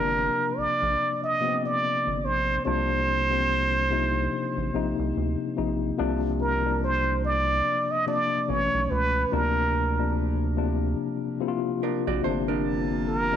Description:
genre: R&B, neo-soul.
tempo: 72 BPM.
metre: 4/4.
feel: swing 58% on 16ths.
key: C dorian.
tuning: A4 = 444 Hz.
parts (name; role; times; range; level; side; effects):
trumpet with plunger mute; melody; 0.0-13.4 s; Bb4 to Eb5; -25 LUFS; right 2 dB; none.
tine electric piano; accompaniment; 0.0-13.4 s; B2 to F4; -28 LUFS; left 7 dB; overdrive, medium stereo tremolo.
rubbery square bass; bass; 0.0-13.4 s; G1 to D2; -29 LUFS; right 2 dB; none.
vintage hollow-body jazz guitar; second line; 11.8-13.4 s; D4 to D5; -30 LUFS; right 14 dB; none.
pipe organ, foundations; sustained chords; 12.6-13.4 s; C3 to A5; -32 LUFS; equal; none.
room: moderate echo chamber reverb, RT60 1.8 s, small room reverb.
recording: 1960s-style stereo with parts hard left and right.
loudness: -23 LUFS.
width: side -9 dB against mid.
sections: 0.0-6.0 A section; 6.0-13.4 A section.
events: none.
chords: 0.0 Gm7; 2.6 Cm11; 6.0 Csus2; 8.5 Aadd9; 9.3 Bbadd9; 12.2 Gm11.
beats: 0.14 0.98 1.81 | 2.64 3.48 4.31 5.14 | 5.98 6.81 7.64 8.48 | 9.31 10.14 10.98 11.81 | 12.64.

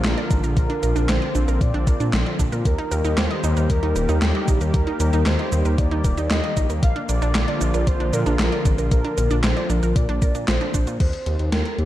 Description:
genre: synthwave.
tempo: 115 BPM.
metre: 4/4.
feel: straight.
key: Eb major.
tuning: A4 = 438 Hz.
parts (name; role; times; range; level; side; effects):
warm velvety synth lead; melody; 0.0-11.9 s; G4 to F5; -28 LUFS; left 1 dB; chorus, digital delay.
warm analog pad; sustained chords; 0.0-11.0 s; D3 to G4; -28 LUFS; left 1 dB; chorus.
dark detuned saw bass; bass; 0.0-11.9 s; Eb1 to Bb2; -22 LUFS; equal; tube saturation, sidechain pumping.
gated 80s digital drum machine; drums; 0.0-11.9 s; cabasa, crash cymbal, handclaps, hi-hat, snare drum; -26 LUFS; equal; gated reverb, gated reverb snare, overdrive.
wide unison pluck; arpeggios; 0.2-10.9 s; D4 to Eb5; -30 LUFS; right 4 dB; digital delay.
electronic kick drum; drums; 0.3-11.1 s; none; -20 LUFS; equal; overdrive.
room: light reverb, digital ambience.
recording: dark, warm production.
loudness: -18 LUFS.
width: side -14 dB against mid.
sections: 0.0-11.0 A section.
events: none.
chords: 0.0 Bb; 2.7 Eb; 6.8 Bb; 11.0 Eb5.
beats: 0.04 | 0.57 1.09 1.61 2.13 | 2.65 3.17 3.70 4.22 | 4.74 5.26 5.78 6.31 | 6.83 7.35 7.87 8.39 | 8.91 9.44 9.96 10.48 | 11.00 11.52.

